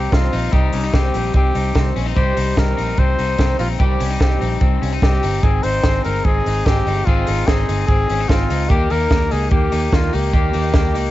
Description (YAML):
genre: jangly indie pop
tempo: 147 BPM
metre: 4/4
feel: straight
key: unclear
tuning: A4 = 439 Hz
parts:
  - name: clear trumpet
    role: melody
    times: 0.0-11.1 s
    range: Eb4 to C5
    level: -22 LUFS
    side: left 1 dB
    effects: cassette tape
  - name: fingerpicked twelve-string acoustic guitar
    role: accompaniment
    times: 0.0-11.1 s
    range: Ab2 to Ab4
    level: -28 LUFS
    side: right 10 dB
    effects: wide subtle chorus
  - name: electric guitar at the edge of break-up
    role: arpeggios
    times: 0.0-11.1 s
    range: G3 to Ab4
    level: -24 LUFS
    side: left 9 dB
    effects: analog delay
  - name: vintage muted fingered electric bass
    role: bass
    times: 0.0-11.1 s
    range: G1 to Eb2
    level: -20 LUFS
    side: equal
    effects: none
  - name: compact cocktail drum kit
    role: drums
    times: 0.1-11.0 s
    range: hi-hat, kick drum, snare drum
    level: -18 LUFS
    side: equal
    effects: none
room: light reverb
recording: home recording on cassette, nothing above 7.7 kHz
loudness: -15 LUFS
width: side -15 dB against mid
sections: 0.0-11.1 A section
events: none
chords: 0.0 Cm; 5.4 Ab; 8.7 Eb